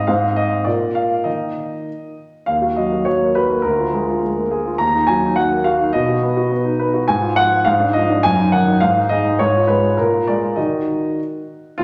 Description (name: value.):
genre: classical-period piano sonatina.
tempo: 103 BPM.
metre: 2/4.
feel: rubato.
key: Eb minor.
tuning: A4 = 440 Hz.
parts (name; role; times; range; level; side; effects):
warm concert grand piano; solo; 0.0-11.8 s; D2 to Bb5; -18 LUFS; equal; none.
room: wet recital hall reverb, RT60 1.6 s.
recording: none.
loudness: -17 LUFS.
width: mono.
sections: 0.0-2.5 A section; 2.5-11.8 B section.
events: none.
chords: 0.0 Ab; 0.7 N.C.; 1.3 Eb5; 2.5 Ebm; 3.6 Bb7/D; 4.8 Ebm; 5.9 B; 7.1 Fm/Ab; 7.7 Ddim/Ab; 8.2 Ebm/Gb; 8.8 Ab5; 9.4 Fdim/Ab; 10.0 Bb7; 10.6 Ebm.